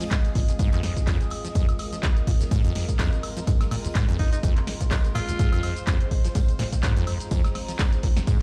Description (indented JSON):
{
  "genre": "acid house",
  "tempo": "125 BPM",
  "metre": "4/4",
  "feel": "swing 56% on 16ths",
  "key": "F minor",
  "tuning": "A4 = 440 Hz",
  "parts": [
    { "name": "string machine, full ensemble", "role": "sustained chords", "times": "0.0-8.4 s", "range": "Ab3 to C5", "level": "-40 LUFS", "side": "equal", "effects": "ensemble chorus, sidechain pumping" },
    { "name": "acid bass, saw", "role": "riff", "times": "0.0-8.4 s", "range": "Eb2 to F3", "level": "-31 LUFS", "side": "equal", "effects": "tube saturation, analog chorus, sidechain pumping, tape echo" },
    { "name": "punchy analog drum machine", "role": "drums", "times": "0.0-8.4 s", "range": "handclaps, hi-hat, shaker, snare drum, woodblock", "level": "-36 LUFS", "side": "equal", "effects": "small room ambience" },
    { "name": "warbly tape-like pad", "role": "texture", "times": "0.0-8.4 s", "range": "C4 to Eb6", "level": "-41 LUFS", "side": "equal", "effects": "chorus, built-in reverb, sidechain pumping" },
    { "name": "electronic kick drum", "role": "drums", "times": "0.1-8.4 s", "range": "none", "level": "-25 LUFS", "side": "equal", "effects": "small room ambience" },
    { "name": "natural country drum kit", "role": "drums", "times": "0.1-8.4 s", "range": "hi-hat, snare drum, tambourine", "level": "-46 LUFS", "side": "equal", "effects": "none" },
    { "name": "raspy alto saxophone", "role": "melody", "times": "4.2-5.8 s", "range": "Eb4 to F4", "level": "-37 LUFS", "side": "equal", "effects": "tape echo" }
  ],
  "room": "light reverb",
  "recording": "played on a big sound system in a bare room, stone room reverb",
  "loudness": "-24 LUFS",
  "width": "mono",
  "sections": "0.0-8.4 A section",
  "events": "none",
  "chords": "0.0 Fm",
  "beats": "0.11 0.59 1.07 | 1.55 2.03 2.51 2.99 | 3.47 3.95 4.43 4.91 | 5.39 5.87 6.35 6.83 | 7.31 7.79 8.27"
}